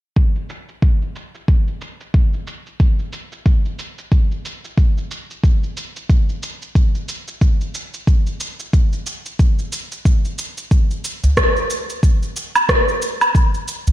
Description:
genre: organic downtempo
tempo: 91 BPM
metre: 4/4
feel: swing 58% on 16ths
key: none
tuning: none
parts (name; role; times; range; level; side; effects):
- electronic cabasa, rim click and woodblock; drums; 0.2-13.9 s; none; -21 LUFS; right 1 dB; low-pass filter on perc, low-pass filter on snare, low-pass filter on room
- electronic kick drum; drums; 0.2-13.5 s; none; -15 LUFS; equal; none
- udu; percussion; 11.2-13.9 s; none; -15 LUFS; equal; none
room: little or no reverb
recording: dark, warm production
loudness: -16 LUFS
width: side -14 dB against mid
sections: 0.2-13.9 A section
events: filter sweep on drum 0.2-13.9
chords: none

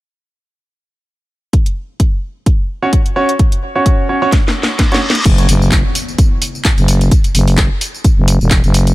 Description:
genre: bass house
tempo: 129 BPM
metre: 4/4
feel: swing 55% on 16ths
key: unclear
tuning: A4 = 439 Hz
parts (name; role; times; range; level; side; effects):
- electronic kick drum; drums; 1.5-8.6 s; none; -12 LUFS; equal; none
- garage drum kit; drums; 1.5-8.9 s; crash cymbal, handclaps, hi-hat, snare drum, tambourine; -18 LUFS; equal; none
- clear concert grand piano; stabs; 2.8-5.0 s; C#4 to C#5; -17 LUFS; right 2 dB; sidechain pumping, low-pass filter, tape echo
- reverse cymbal and impact; sound effects; 4.5-7.1 s; none; -22 LUFS; left 1 dB; none
- growling FM bass; bass; 5.3-8.9 s; E1 to F#1; -11 LUFS; equal; tube saturation, sidechain pumping
room: digital ambience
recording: none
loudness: -11 LUFS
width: side -18 dB against mid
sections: 1.5-5.3 A section; 5.3-8.9 B section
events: drum fill 4.3-5.3; reverse cymbal 4.5-5.3; drop 5.3-8.9; impact 5.3-7.1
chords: 1.5 F#5

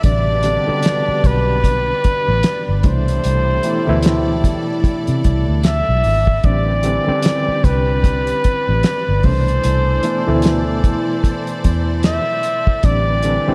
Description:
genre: R&B, neo-soul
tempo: 75 BPM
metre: 4/4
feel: swing 58% on 16ths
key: C major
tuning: A4 = 439 Hz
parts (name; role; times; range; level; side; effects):
- overdriven reed electric piano; accompaniment; 0.0-13.5 s; B2 to E4; -24 LUFS; equal; fast tremolo, slapback echo
- warm studio string section; sustained chords; 0.0-13.5 s; C4 to D5; -32 LUFS; equal; none
- mellow trombone section; stabs; 0.0-13.5 s; A2 to A4; -32 LUFS; equal; slapback echo, tape echo
- vintage muted fingered electric bass; bass; 0.0-13.5 s; G1 to C3; -21 LUFS; equal; none
- cloth-damped thuddy drum kit; drums; 0.0-13.4 s; hi-hat, kick drum, snare drum; -19 LUFS; equal; none
- trumpet with bucket mute; melody; 0.1-13.5 s; B4 to E5; -22 LUFS; equal; slapback echo
room: moderate lush hall reverb, RT60 1.8 s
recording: big arena sound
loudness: -16 LUFS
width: mono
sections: 0.0-13.5 A section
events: none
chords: 0.0 Am11; 2.8 C69; 6.4 Am11; 9.2 C69; 12.8 Am11

